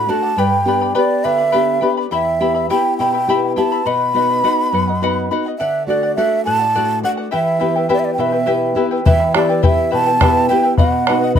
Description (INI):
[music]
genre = andean folk, Andean ensemble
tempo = 69 BPM (dotted quarters)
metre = 6/8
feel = straight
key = E minor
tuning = A4 = 440 Hz
[part]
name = breathy mellow large quena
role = melody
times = 0.0-11.4 s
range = D5 to B5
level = -17 LUFS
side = right 2 dB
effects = none
[part]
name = charango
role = accompaniment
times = 0.0-11.4 s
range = E4 to B5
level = -21 LUFS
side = left 5 dB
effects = none
[part]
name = nylon-string guitar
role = accompaniment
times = 0.0-11.4 s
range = E2 to G4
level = -19 LUFS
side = left 1 dB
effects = none
[part]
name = bombo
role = percussion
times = 9.1-11.4 s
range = none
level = -14 LUFS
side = left 1 dB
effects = none
[sound]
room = light reverb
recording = close, detailed microphones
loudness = -14 LUFS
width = side -8 dB against mid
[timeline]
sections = 0.0-9.1 A section; 9.1-11.4 A section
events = none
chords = 0.4 G; 2.1 Em; 3.9 B; 5.6 D; 7.3 Em; 10.8 B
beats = | 0.38 1.25 | 2.12 2.99 | 3.86 4.73 | 5.59 6.46 | 7.33 8.19 | 9.06 9.93 | 10.79